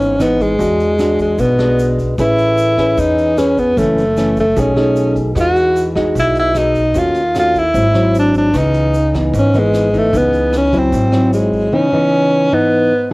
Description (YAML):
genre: bossa nova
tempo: 151 BPM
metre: 4/4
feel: straight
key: C# minor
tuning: A4 = 441 Hz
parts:
  - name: breathy tenor saxophone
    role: melody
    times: 0.0-13.1 s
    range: G#3 to F#4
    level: -14 LUFS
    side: equal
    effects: cassette tape
  - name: nylon-string guitar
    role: accompaniment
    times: 0.0-13.1 s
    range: F#2 to B4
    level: -17 LUFS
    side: equal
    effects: cassette tape
  - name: upright bass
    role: bass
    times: 0.0-11.7 s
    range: F#1 to E2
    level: -20 LUFS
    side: equal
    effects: none
  - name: vintage brush drum kit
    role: drums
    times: 0.0-11.6 s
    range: hi-hat, kick drum, rim click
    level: -28 LUFS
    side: equal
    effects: cassette tape
  - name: egg shaker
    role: percussion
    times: 0.0-11.7 s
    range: none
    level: -42 LUFS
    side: right 5 dB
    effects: none
room: light reverb, studio reverb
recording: home recording on cassette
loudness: -11 LUFS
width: side -22 dB against mid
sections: 0.0-11.7 A section; 11.7-13.1 B section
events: none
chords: 0.0 C#m9; 0.6 E9; 2.2 Amaj9; 3.8 F#m7; 4.6 B13; 5.4 Emaj9; 7.0 D#m7b5; 7.8 G#aug7; 8.5 C#m9; 10.9 G#7b13; 11.7 C#m9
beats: 0.20 | 0.60 0.99 1.39 1.79 | 2.19 2.58 2.98 3.38 | 3.77 4.17 4.57 4.97 | 5.37 5.76 6.16 6.56 | 6.96 7.35 7.75 8.15 | 8.55 8.94 9.34 9.74 | 10.14 10.53 10.93 11.33 | 11.73 12.12 12.52 12.92